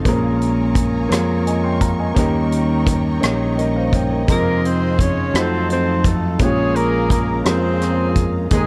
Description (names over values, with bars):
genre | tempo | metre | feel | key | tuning
slow gospel | 57 BPM (dotted quarters) | 6/8 | straight | unclear | A4 = 440 Hz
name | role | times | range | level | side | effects
warm horn section | melody | 0.0, 4.3-8.7 s | Ab3 to Db5 | -24 LUFS | equal | none
clear concert grand piano | accompaniment | 0.0-8.7 s | Bb2 to C6 | -24 LUFS | equal | none
mellow tonewheel organ | sustained chords | 0.0-8.7 s | C3 to F5 | -29 LUFS | equal | none
warm symphonic string section | sustained chords | 0.0-8.7 s | Db4 to Db6 | -35 LUFS | equal | none
fingered electric bass | bass | 0.0-8.7 s | Bb1 to F2 | -23 LUFS | equal | none
natural country drum kit | drums | 0.1-8.7 s | hi-hat, kick drum, rim click | -22 LUFS | equal | none
room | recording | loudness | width
light reverb, small room ambience | dark, warm production | -18 LUFS | mono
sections
0.0-8.7 A section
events
none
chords
0.1 Bbm7; 4.3 Fm7; 5.3 F7b9; 6.4 Bbm7